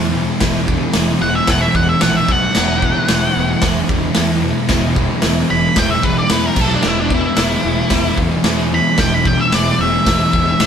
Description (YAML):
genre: garage rock duo or trio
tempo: 112 BPM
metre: 4/4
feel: straight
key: unclear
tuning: A4 = 442 Hz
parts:
  - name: fuzz guitar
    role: riff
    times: 0.0-10.7 s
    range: E2 to B3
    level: -18 LUFS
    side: equal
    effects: distortion
  - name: fuzz fingered electric bass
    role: bass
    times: 0.0-10.7 s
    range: E1 to E2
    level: -22 LUFS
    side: equal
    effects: overdrive, tube saturation
  - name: raw garage drum kit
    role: drums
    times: 0.4-10.7 s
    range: crash cymbal, hi-hat, kick drum, snare drum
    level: -17 LUFS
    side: equal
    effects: none
  - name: octave-fuzz lead guitar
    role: melody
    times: 1.2-10.7 s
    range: D4 to B5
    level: -18 LUFS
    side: equal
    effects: distortion
room: moderate stone room reverb, RT60 1.2 s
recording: band playing live in one room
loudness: -13 LUFS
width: side -8 dB against mid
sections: 0.0-10.7 A section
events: lead electric guitar solo 0.0-10.7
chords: 0.0 E5; 2.3 B5; 2.6 E5; 6.6 B5; 6.8 E5